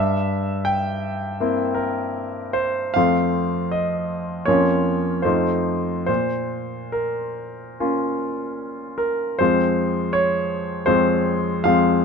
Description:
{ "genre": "classical, romantic character piece for solo piano", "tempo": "69-85 BPM", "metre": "4/4", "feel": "rubato", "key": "Bb minor", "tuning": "A4 = 440 Hz", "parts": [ { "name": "clear concert grand piano", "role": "solo", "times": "0.0-12.0 s", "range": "F2 to G5", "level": "-19 LUFS", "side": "equal", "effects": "none" } ], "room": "light reverb", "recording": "close, detailed microphones", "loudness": "-19 LUFS", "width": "side -5 dB against mid", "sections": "0.0-9.4 A section; 9.4-12.0 B section", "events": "none", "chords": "0.0 C7/G; 3.0 F; 4.5 Bbm/F; 5.2 F7; 6.1 Bbm; 9.4 Fm", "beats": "0.68 1.41 2.15 | 2.96 3.72 4.47 5.24 | 6.08 6.95 7.79 8.61 | 9.40 10.14 10.87 11.67" }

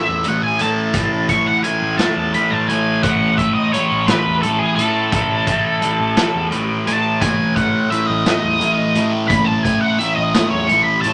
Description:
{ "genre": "psychedelic rock", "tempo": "57 BPM (dotted quarters)", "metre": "6/8", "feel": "straight", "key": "unclear", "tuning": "A4 = 440 Hz", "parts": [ { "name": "octave-fuzz lead guitar", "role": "melody", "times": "0.0-11.1 s", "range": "G#4 to C#6", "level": "-21 LUFS", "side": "equal", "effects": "wah, distortion" }, { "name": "thick fuzz guitar", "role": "riff", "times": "0.0-11.1 s", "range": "A2 to A3", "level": "-21 LUFS", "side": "equal", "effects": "distortion, phaser" }, { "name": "fuzz picked electric bass", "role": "bass", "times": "0.1-11.1 s", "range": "A1 to A2", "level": "-28 LUFS", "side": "equal", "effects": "overdrive" }, { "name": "vintage drum kit", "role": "drums", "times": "0.2-11.1 s", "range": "hi-hat, kick drum, snare drum", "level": "-24 LUFS", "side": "equal", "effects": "none" }, { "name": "congas", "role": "percussion", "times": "7.2-10.7 s", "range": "none", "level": "-32 LUFS", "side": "equal", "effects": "none" } ], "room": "moderate studio ambience, RT60 0.5 s", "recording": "nothing above 11.0 kHz", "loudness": "-17 LUFS", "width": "mono", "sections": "0.0-11.1 A section", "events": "lead electric guitar solo 0.0-11.1", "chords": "0.0 A5", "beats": "| 0.95 2.00 | 3.04 4.08 | 5.13 6.17 | 7.22 8.26 | 9.31 10.35" }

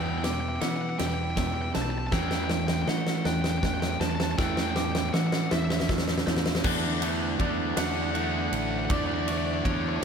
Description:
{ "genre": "post-rock", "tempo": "53 BPM (dotted quarters)", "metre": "6/8", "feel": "straight", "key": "unclear", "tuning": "A4 = 440 Hz", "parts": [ { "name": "fuzz lead guitar", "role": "melody", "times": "0.0-10.0 s", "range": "C#5 to A5", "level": "-34 LUFS", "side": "left 2 dB", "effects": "distortion, analog delay" }, { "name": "rich symphonic string section", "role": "sustained chords", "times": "0.0-10.0 s", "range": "E3 to B4", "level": "-44 LUFS", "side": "equal", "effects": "none" }, { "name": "clean electric guitar", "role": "arpeggios", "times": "0.0-10.0 s", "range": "E3 to D5", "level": "-39 LUFS", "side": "left 3 dB", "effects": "none" }, { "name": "glockenspiel with rubber mallets", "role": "arpeggios", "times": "0.0-10.0 s", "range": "C#6 to G7", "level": "-40 LUFS", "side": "right 5 dB", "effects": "analog delay" }, { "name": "crunchy overdriven guitar", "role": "riff", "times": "0.0-10.0 s", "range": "E2 to D4", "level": "-32 LUFS", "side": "right 10 dB", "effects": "none" }, { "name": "overdriven semi-hollow guitar", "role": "riff", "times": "0.0-10.0 s", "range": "E2 to D4", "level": "-34 LUFS", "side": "left 13 dB", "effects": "none" }, { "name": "fuzz fingered electric bass", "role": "bass", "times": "0.0-10.0 s", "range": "A1 to E3", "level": "-32 LUFS", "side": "equal", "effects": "overdrive" }, { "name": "huge arena drum kit", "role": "drums", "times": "0.2-9.8 s", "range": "crash cymbal, kick drum, ride cymbal, snare drum", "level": "-29 LUFS", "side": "equal", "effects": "none" } ], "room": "light reverb", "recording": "none", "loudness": "-25 LUFS", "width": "side -6 dB against mid", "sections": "0.0-6.6 A section; 6.6-10.0 B section", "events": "build-up 0.0-6.6; drum fill 0.0-6.6", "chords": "0.0 Em; 2.1 A/E; 6.6 D", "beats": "0.99 | 2.12 3.25 | 4.38 5.51 | 6.64 7.77 | 8.90 10.02" }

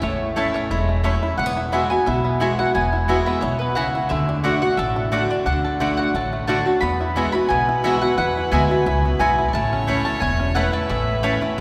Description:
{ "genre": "bluegrass", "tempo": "177 BPM", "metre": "4/4", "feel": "straight", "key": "E mixolydian", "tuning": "A4 = 440 Hz", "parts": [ { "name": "bluegrass banjo", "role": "melody", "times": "0.0-11.6 s", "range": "A3 to A4", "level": "-30 LUFS", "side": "equal", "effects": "none" }, { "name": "mandolin", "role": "melody", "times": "0.0-11.6 s", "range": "B4 to B5", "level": "-26 LUFS", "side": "equal", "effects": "none" }, { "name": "picked steel-string acoustic guitar", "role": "accompaniment", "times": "0.0-11.6 s", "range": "E2 to F#4", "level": "-26 LUFS", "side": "equal", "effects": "none" }, { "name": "upright bass", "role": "bass", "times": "0.0-11.6 s", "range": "E1 to E2", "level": "-27 LUFS", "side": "equal", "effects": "none" }, { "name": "mandolin", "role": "stabs", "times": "0.4-11.3 s", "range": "A3 to A5", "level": "-30 LUFS", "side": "equal", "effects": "none" }, { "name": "rich fiddle", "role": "second line", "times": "6.8-11.6 s", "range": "B4 to D5", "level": "-31 LUFS", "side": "equal", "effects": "none" } ], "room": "wet cathedral reverb, RT60 5.4 s", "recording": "recorded in a church or concert hall", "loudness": "-20 LUFS", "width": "mono", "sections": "0.0-11.6 A section", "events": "none", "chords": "0.0 A; 1.4 Eadd9; 4.1 D; 6.8 Eadd9; 9.5 A", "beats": "| 0.03 0.37 0.71 1.05 | 1.39 1.73 2.07 2.41 | 2.75 3.09 3.43 3.77 | 4.11 4.45 4.79 5.13 | 5.47 5.81 6.15 6.49 | 6.83 7.17 7.50 7.84 | 8.18 8.52 8.86 9.20 | 9.54 9.88 10.22 10.56 | 10.90 11.24 11.58" }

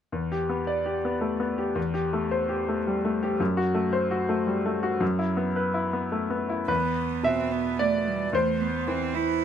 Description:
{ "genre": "neoclassical piano and strings", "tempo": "110 BPM", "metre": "3/4", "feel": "rubato", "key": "E minor", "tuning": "A4 = 439 Hz", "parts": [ { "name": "bright concert grand piano", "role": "accompaniment", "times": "0.1-9.4 s", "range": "E2 to E5", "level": "-24 LUFS", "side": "left 1 dB", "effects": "none" }, { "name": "warm cello", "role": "second line", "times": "6.7-9.4 s", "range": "G3 to E4", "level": "-28 LUFS", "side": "right 10 dB", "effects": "none" } ], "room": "light reverb", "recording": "none", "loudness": "-24 LUFS", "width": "side -8 dB against mid", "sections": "0.1-6.7 A section; 6.7-9.4 B section", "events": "none", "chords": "0.1 Em7; 1.8 Am7/E; 3.4 F#dim; 5.0 Bsus4/F#; 6.7 E5; 8.3 N.C.", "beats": "| 0.12 0.67 1.22 | 1.77 2.31 2.85 | 3.40 3.94 4.47 | 5.01 5.56 6.12 | 6.69 7.24 7.79 | 8.33 8.87 9.41" }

